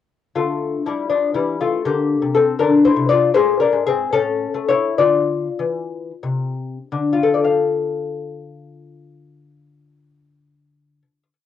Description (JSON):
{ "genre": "classical, baroque-style dance for lute", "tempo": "58-82 BPM (dotted quarters)", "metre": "6/8", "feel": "rubato", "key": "D minor", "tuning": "A4 = 440 Hz", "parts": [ { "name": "lute", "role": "solo", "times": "0.4-11.5 s", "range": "Ab2 to F5", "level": "-16 LUFS", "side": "left 5 dB", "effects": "none" } ], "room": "moderate studio ambience, RT60 0.5 s", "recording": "home recording on cassette", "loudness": "-16 LUFS", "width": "side -10 dB against mid", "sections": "0.3-6.9 A section; 6.9-10.9 final chord", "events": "slowing down 2.6-6.9", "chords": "0.3 Dm; 1.8 Bbmaj13; 2.6 C9; 3.3 Bb7; 4.1 A; 5.0 Dm", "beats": "| 0.35 1.10 | 1.85 2.60 | 3.35 4.13 | 4.98 5.90 | 6.91 7.89 | 8.89 9.90" }